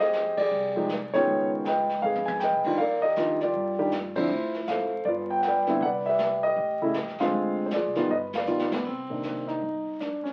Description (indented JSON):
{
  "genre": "jazz piano trio",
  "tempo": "158 BPM",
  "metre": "4/4",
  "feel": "swing 64% on 8ths",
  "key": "C minor",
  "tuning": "A4 = 440 Hz",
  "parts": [
    { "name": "dark concert grand piano", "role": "melody", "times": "0.0-10.3 s", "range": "C3 to Ab5", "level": "-27 LUFS", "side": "equal", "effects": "none" },
    { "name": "upright bass", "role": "bass", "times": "0.0-10.3 s", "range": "G1 to G2", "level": "-43 LUFS", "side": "equal", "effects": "none" },
    { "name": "jazz brush drum kit", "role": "drums", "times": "0.0-10.3 s", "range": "brushed snare drum, crash cymbal, hi-hat, kick drum, ride cymbal, snare drum, toms", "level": "-40 LUFS", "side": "equal", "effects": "none" }
  ],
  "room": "wet studio reverb, RT60 0.7 s",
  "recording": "very old 78 rpm record, vinyl crackle",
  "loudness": "-27 LUFS",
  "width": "mono",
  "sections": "0.0-8.9 A section; 8.9-10.3 B section",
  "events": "band accent 0.3, 4.1, 8.3; drum fill 2.0-2.4, 8.1-8.9",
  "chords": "0.0 Fm9; 1.3 Db9; 2.8 Ebmaj9; 4.3 Dm9; 5.1 G7; 5.8 Cmaj9; 6.6 A7(no3); 7.3 Dm7b5; 8.1 G7b13; 8.9 Cm9"
}